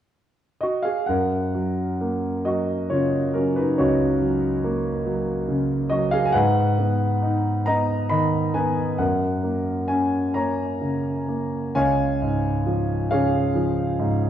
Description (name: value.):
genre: classical, lyrical solo piano.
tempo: 43-47 BPM (dotted quarters).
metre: 6/8.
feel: rubato.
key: F# major.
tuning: A4 = 440 Hz.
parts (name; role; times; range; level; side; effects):
warm concert grand piano; solo; 0.6-14.3 s; C#2 to B5; -20 LUFS; equal; none.
room: wet scoring stage reverb, RT60 1.6 s.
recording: dark, warm production.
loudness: -20 LUFS.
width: side -10 dB against mid.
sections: 0.0-1.1 A section; 1.1-11.7 B section; 11.7-14.3 C section.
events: none.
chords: 0.0 F#sus2; 1.1 F#; 6.4 G#m7; 9.0 F#; 11.7 Db.